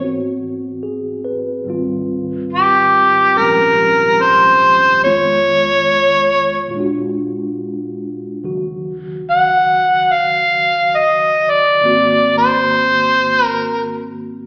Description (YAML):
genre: jazz ballad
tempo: 71 BPM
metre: 4/4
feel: swing 66% on 8ths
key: unclear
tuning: A4 = 440 Hz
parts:
  - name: mellow tine electric piano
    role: accompaniment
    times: 0.0-14.5 s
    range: Db2 to B4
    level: -24 LUFS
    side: equal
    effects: none
  - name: mellow harmonica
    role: melody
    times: 2.5-14.0 s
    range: G4 to Gb5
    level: -14 LUFS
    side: equal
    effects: none
room: wet large studio reverb, RT60 1.4 s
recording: heard from further back in the room, AM radio sound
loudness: -14 LUFS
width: mono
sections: 0.0-14.5 A section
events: none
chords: 0.0 Ab7alt; 1.7 Dbmaj9#11; 5.0 Fm7b5; 6.7 Bb7b13; 8.4 Ebm9; 11.8 Ab9